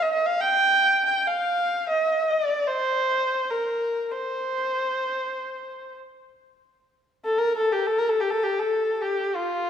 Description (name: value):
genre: Persian modal ensemble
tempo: free time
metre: none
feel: none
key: unclear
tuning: A4 = 440 Hz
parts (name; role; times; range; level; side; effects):
- warm kamancheh; solo; 0.0-9.7 s; F4 to G5; -22 LUFS; equal; none
room: moderate concert hall reverb, RT60 2.3 s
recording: recorded in a church or concert hall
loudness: -22 LUFS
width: side -8 dB against mid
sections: 0.0-9.7 A section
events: none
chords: none